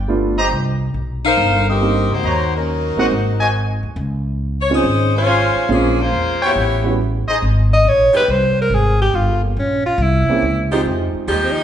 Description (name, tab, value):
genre	jazz, big band swing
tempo	139 BPM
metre	4/4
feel	swing 68% on 8ths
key	Ab major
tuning	A4 = 440 Hz
part	upright bass	bass	0.0-11.6 s	G1 to F2	-19 LUFS	equal	none
part	warm baby grand piano	accompaniment	0.1-7.0, 10.3-11.3 s	G3 to G4	-21 LUFS	right 3 dB	none
part	warm trumpet section	stabs	0.4-7.4 s	Db4 to C6	-21 LUFS	equal	none
part	warm saxophone section	melody	1.2-7.0 s	F3 to F5	-18 LUFS	left 2 dB	none
part	clear alto saxophone	melody	7.7-11.6 s	Bb3 to Eb5	-16 LUFS	equal	none
part	bright saxophone section	sustained chords	8.1-11.6 s	Eb3 to G4	-21 LUFS	right 1 dB	none
room	wet large studio reverb, RT60 1.5 s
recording	band playing live in one room, nothing above 11.0 kHz, faint mains hum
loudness	-14 LUFS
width	side -10 dB against mid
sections	0.0-7.4 A section; 7.4-11.6 B section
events	alto saxophone solo 7.4-11.6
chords	0.0 G7; 0.5 Cm7; 2.2 Ebm7; 3.1 Ab7(no3); 4.0 Dbmaj7; 5.7 Bbm7; 6.6 A13; 7.4 Ab; 9.1 Gm7b5; 10.0 C7b9; 10.9 Fm9